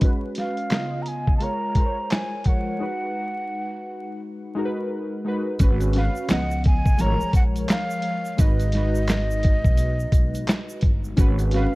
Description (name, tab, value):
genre	lo-fi hip hop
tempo	86 BPM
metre	4/4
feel	swing 61% on 16ths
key	G# dorian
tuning	A4 = 440 Hz
part	warbly lo-fi synth keys	accompaniment	0.0-11.8 s	C#3 to D#5	-28 LUFS	equal	chorus, tremolo, cassette tape, low-pass filter
part	dusty soul sampler-style drum kit	drums	0.0-11.7 s	handclaps, hi-hat, kick drum, snare drum	-20 LUFS	equal	none
part	breathy mellow silver concert flute	melody	0.4-11.8 s	D#5 to A#5	-29 LUFS	equal	low-pass filter
part	upright bass	bass	5.6-11.7 s	G1 to C#2	-23 LUFS	equal	none
part	egg shaker	percussion	5.6-11.5 s	none	-46 LUFS	right 3 dB	none
room	small room ambience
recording	vinyl crackle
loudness	-20 LUFS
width	side -21 dB against mid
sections	0.0-5.6 A section; 5.6-11.8 B section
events	filter sweep 0.0-5.6; break 2.8-5.6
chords	0.0 C#7sus4/G#; 0.7 C#9; 1.4 F#maj9#11; 2.8 G#m7; 5.6 C#7sus4/G#; 6.3 C#9; 7.0 G#sus4; 8.4 G#m7; 11.2 C#7sus4/G#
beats	| 0.02 0.71 1.41 2.11 | 2.81 3.51 4.20 4.90 | 5.60 6.30 6.99 7.69 | 8.39 9.09 9.79 10.48 | 11.18